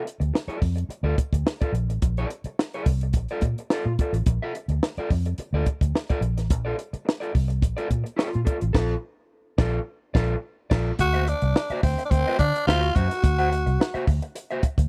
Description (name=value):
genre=funk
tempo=107 BPM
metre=4/4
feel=straight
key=unclear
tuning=A4 = 439 Hz
part: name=electric guitar at the edge of break-up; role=accompaniment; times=0.0-14.8 s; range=F4 to F#5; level=-32 LUFS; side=equal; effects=none
part: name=compact cocktail drum kit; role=drums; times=0.1-14.9 s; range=crash cymbal, hi-hat, kick drum, snare drum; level=-25 LUFS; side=equal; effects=none
part: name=vintage muted fingered electric bass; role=bass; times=0.2-14.9 s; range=A1 to D3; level=-27 LUFS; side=equal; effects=none
part: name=growling tenor saxophone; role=melody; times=11.0-14.1 s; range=C4 to F#4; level=-27 LUFS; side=equal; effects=none
room=small room ambience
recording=dry, close 1970s-style studio recording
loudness=-25 LUFS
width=mono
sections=0.0-11.0 A section; 11.0-14.9 B section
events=band accent 8.8-11.0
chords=0.0 Bbmaj7; 11.0 D9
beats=0.33 0.89 1.45 | 2.02 2.58 3.14 3.70 | 4.26 4.82 5.38 5.95 | 6.51 7.07 7.63 8.19 | 8.75 9.31 9.87 10.43 | 10.99 11.55 12.11 12.67 | 13.23 13.79 14.35